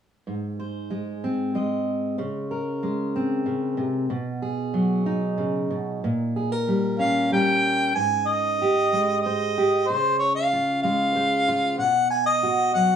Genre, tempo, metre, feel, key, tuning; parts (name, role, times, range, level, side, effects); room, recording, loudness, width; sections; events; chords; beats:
acoustic folk-pop ballad; 94 BPM; 3/4; straight; Ab major; A4 = 440 Hz
fingerpicked steel-string acoustic guitar; accompaniment; 0.3-13.0 s; Ab2 to Eb5; -24 LUFS; right 1 dB
warm harmonica; melody; 7.0-13.0 s; C5 to Ab5; -21 LUFS; equal
moderate studio reverb, RT60 0.8 s; small room ambience; -21 LUFS; side -8 dB against mid
0.3-8.0 A section; 8.0-13.0 B section
0.3 Ab; 2.2 Db5; 4.1 B6; 6.0 Bbm6; 8.0 Abmaj7; 9.9 Dbmaj7; 11.8 B5
| 0.28 0.92 1.56 | 2.20 2.84 3.48 | 4.11 4.75 5.39 | 6.03 6.67 7.31 | 7.95 8.60 9.23 | 9.87 10.51 11.15 | 11.79 12.43